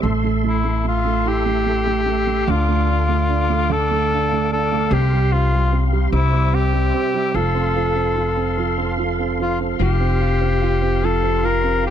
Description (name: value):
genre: six-eight pop ballad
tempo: 49 BPM (dotted quarters)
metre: 6/8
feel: straight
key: F major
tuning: A4 = 438 Hz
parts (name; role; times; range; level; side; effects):
- dark upright piano; accompaniment; 0.0-11.9 s; C3 to F4; -23 LUFS; right 10 dB; none
- tonewheel organ; sustained chords; 0.0-11.9 s; G4 to D6; -27 LUFS; left 2 dB; chorus vibrato, slow rotary speaker
- upright bass; bass; 0.0-11.9 s; F1 to D2; -20 LUFS; left 1 dB; none
- warm cor anglais; melody; 0.5-11.9 s; E4 to Bb4; -21 LUFS; left 3 dB; none
- direct-recorded clean electric guitar; arpeggios; 9.8-11.9 s; F3 to G4; -29 LUFS; left 16 dB; ensemble chorus
room: small room ambience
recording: dry, close 1970s-style studio recording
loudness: -16 LUFS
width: side -9 dB against mid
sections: 0.0-11.9 A section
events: none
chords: 0.0 Am; 2.5 Dm; 4.9 Csus4; 6.1 Cadd9; 7.3 F; 9.8 Fsus2